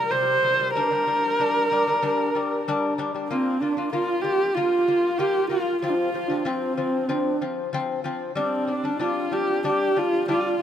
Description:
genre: mongolian traditional, Mongolian folk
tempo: 94 BPM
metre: 4/4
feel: straight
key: Bb gong mode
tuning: A4 = 439 Hz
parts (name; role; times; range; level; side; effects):
- warm horsehead fiddle; melody; 0.0-10.6 s; C4 to C5; -24 LUFS; equal; none
- breathy bright low xiao; second line; 0.0-10.6 s; C4 to C5; -27 LUFS; right 4 dB; none
- lute; arpeggios; 0.0-10.5 s; C3 to F4; -27 LUFS; left 3 dB; none
room: moderate huge ambient reverb, RT60 6.1 s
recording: none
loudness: -21 LUFS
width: side -9 dB against mid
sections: 0.0-3.3 A section; 3.3-10.6 B section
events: none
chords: 0.0 C5; 0.8 G5; 3.3 Bb5; 5.8 F5; 8.4 G5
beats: 0.11 | 0.75 1.39 2.02 2.66 | 3.29 3.93 4.57 5.20 | 5.84 6.47 7.11 7.74 | 8.38 9.01 9.65 10.29

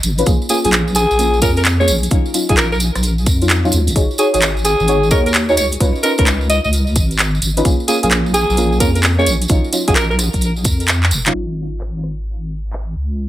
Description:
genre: UK garage, two-step garage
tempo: 130 BPM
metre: 4/4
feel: swing 66% on 16ths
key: Eb minor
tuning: A4 = 442 Hz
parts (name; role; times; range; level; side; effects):
- deep mellow chord stab; stabs; 0.0-11.3 s; Gb3 to Db5; -20 LUFS; equal; chorus, tape echo
- deep soft wobble bass; bass; 0.0-13.3 s; F1 to F2; -18 LUFS; equal; chorus, tube saturation
- house drum kit; drums; 0.0-12.8 s; handclaps, hi-hat, rim click; -18 LUFS; equal; none
- tambourine; percussion; 0.0-11.3 s; none; -24 LUFS; right 2 dB; none
- electronic kick drum; drums; 0.3-10.8 s; none; -16 LUFS; equal; none
- raspy alto saxophone; melody; 0.5-10.2 s; Ab4 to Eb5; -18 LUFS; equal; tape echo
room: light reverb, digital ambience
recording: low-pass filter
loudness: -13 LUFS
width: side -14 dB against mid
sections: 0.0-11.3 A section; 11.3-13.3 B section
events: drum fill 11.0-11.3; band accent 11.2; filter sweep 11.3-13.3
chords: 0.3 Bbm7; 1.9 Ebm9/Bb; 4.0 Ab7sus4; 5.6 Db9; 7.7 Bbm7; 9.3 Ebm9/Bb; 11.3 N.C.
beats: | 0.27 0.73 1.19 1.65 | 2.11 2.57 3.04 3.50 | 3.96 4.42 4.88 5.34 | 5.80 6.27 6.73 7.19 | 7.65 8.11 8.57 9.04 | 9.50 9.96 10.42 10.88 | 11.34 11.80 12.27 12.73 | 13.19

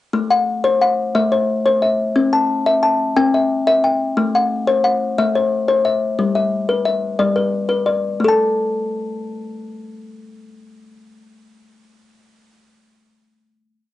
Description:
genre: southern african traditional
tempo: 119 BPM (dotted quarters)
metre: 12/8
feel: straight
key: A equiheptatonic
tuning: A4 = 441 Hz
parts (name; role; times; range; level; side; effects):
- kalimba; solo; 0.1-11.6 s; G3+29c to A5; -15 LUFS; left 2 dB; none
room: moderate small room reverb, RT60 0.5 s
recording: home recording on cassette, nothing above 10.4 kHz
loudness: -15 LUFS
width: side -14 dB against mid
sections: 0.1-8.2 A section; 8.2-12.2 final note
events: none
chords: 0.1 Am; 2.2 C; 4.2 Am; 6.2 G; 8.2 N.C.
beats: | 0.14 0.65 1.16 1.66 | 2.17 2.67 3.17 3.68 | 4.18 4.68 5.18 5.69 | 6.19 6.69 7.20 7.70 | 8.20 8.70 9.21 9.71 | 10.22 10.72 11.23

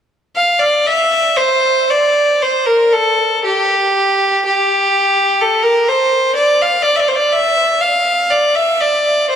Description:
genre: celtic folk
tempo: 61 BPM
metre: 3/4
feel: uneven beats, rubato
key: D minor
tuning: A4 = 441 Hz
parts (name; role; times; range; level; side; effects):
- bright fiddle; solo; 0.4-9.4 s; G4 to F5; -11 LUFS; equal; tape echo
room: wet church reverb, RT60 2.6 s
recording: dark, warm production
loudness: -11 LUFS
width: side -8 dB against mid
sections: 0.4-9.4 A section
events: none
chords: none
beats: | 0.38 1.42 2.44 | 3.45 4.45 5.42 | 6.37 7.32 8.30 | 9.28

